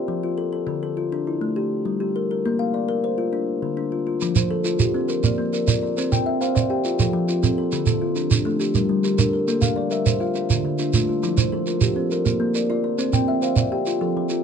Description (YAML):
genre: southern african traditional, mbira-style interlocking cycle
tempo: 137 BPM (dotted quarters)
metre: 12/8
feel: straight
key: F major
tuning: A4 = 440 Hz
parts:
  - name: kalimba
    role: arpeggios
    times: 0.0-14.4 s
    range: D3 to G5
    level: -22 LUFS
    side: left 3 dB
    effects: none
  - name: shekere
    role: percussion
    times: 4.2-14.4 s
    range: none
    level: -21 LUFS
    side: right 6 dB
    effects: none
  - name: kalimba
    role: arpeggios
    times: 4.4-14.4 s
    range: D3 to G5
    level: -25 LUFS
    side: right 3 dB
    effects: none
room: moderate small room ambience, RT60 0.5 s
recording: dark, warm production, nothing above 10.9 kHz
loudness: -20 LUFS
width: side -7 dB against mid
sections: 0.0-4.2 A section; 4.2-14.4 A section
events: none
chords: 0.0 F; 0.7 Dm; 1.6 Gm; 2.4 Bb; 3.3 Dm; 4.2 F; 5.1 Bb; 6.0 C; 6.8 F; 7.7 Dm; 8.6 Gm; 9.5 Bb; 10.4 Dm; 11.2 F; 12.1 Bb; 13.0 C; 13.9 F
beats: 0.24 | 0.69 1.13 1.57 2.01 | 2.45 2.89 3.33 3.77 | 4.21 4.65 5.09 5.53 | 5.97 6.41 6.85 7.29 | 7.72 8.16 8.60 9.04 | 9.48 9.92 10.36 10.79 | 11.23 11.67 12.11 12.55 | 12.99 13.43 13.87 14.31